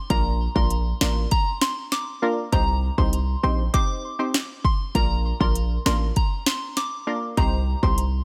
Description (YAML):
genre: dancehall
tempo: 99 BPM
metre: 4/4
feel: straight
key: Bb major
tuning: A4 = 440 Hz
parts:
  - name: soft synth bell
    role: melody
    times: 0.1-8.0 s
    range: Bb5 to D6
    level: -30 LUFS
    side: equal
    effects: chorus, phaser, digital delay
  - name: punchy chord stab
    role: accompaniment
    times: 0.1-8.0 s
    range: Bb3 to C5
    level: -31 LUFS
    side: equal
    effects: chorus, sidechain pumping
  - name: hard-hitting 808-style bass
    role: bass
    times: 0.1-8.2 s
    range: A1 to C2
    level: -25 LUFS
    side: equal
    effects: none
  - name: afro-pop drum kit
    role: drums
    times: 0.1-8.1 s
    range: hi-hat, kick drum, snare drum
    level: -26 LUFS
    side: equal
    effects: none
room: digital ambience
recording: none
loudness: -23 LUFS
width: mono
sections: 0.0-8.2 A section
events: none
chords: 0.1 Bb; 2.5 Cm; 5.0 Bb; 7.4 Cm